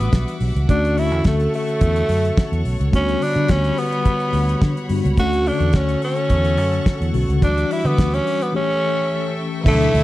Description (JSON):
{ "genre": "disco", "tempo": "107 BPM", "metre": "4/4", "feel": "straight", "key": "D major", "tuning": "A4 = 438 Hz", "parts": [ { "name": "raspy tenor saxophone", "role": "melody", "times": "0.0-10.0 s", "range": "A3 to F#4", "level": "-21 LUFS", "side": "right 1 dB", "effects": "none" }, { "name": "mellow tine electric piano", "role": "accompaniment", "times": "0.0-10.0 s", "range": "B2 to G4", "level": "-24 LUFS", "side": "left 3 dB", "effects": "medium stereo tremolo" }, { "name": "clear studio string section", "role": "sustained chords", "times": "0.0-10.0 s", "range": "G3 to D6", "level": "-31 LUFS", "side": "left 1 dB", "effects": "none" }, { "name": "vintage muted fingered electric bass", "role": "bass", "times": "0.0-10.0 s", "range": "B1 to D3", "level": "-20 LUFS", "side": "equal", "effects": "none" }, { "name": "damped 70s drum kit", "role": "drums", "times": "0.0-10.0 s", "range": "crash cymbal, hi-hat, kick drum, snare drum", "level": "-18 LUFS", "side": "equal", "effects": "none" }, { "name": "clear studio string section", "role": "second line", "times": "9.7-10.0 s", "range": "E4 to E5", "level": "-25 LUFS", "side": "left 2 dB", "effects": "none" } ], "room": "light reverb, studio reverb", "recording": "dark, warm production", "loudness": "-16 LUFS", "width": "side -16 dB against mid", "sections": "0.0-9.7 A section", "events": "break 8.5-9.7", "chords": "0.0 Em9; 0.7 Dmaj7; 2.9 Gmaj7/D; 5.2 Dmaj7; 7.4 Em9/D; 8.5 A7" }